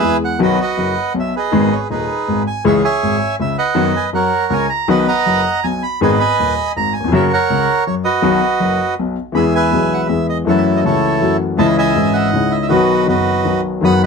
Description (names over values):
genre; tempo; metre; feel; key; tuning
tango; 161 BPM; 3/4; rubato; B major, E major from 9.4 s; A4 = 440 Hz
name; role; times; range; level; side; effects
bandoneon; melody; 0.0-14.1 s; D#4 to D#6; -16 LUFS; right 4 dB; none
clear baby grand piano; accompaniment; 0.0-14.1 s; D#1 to G#4; -16 LUFS; left 3 dB; none
room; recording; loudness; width
moderate studio reverb, RT60 0.5 s; none; -13 LUFS; side -5 dB against mid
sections
0.4-9.4 A section; 9.4-14.1 B section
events
none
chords
0.4 B; 1.5 G#m; 2.6 C#m; 3.8 B/F#; 4.1 F#; 4.9 B; 6.0 G#m; 7.1 F#; 8.2 B; 9.4 E; 10.5 F#m7; 11.6 C#madd9; 12.7 B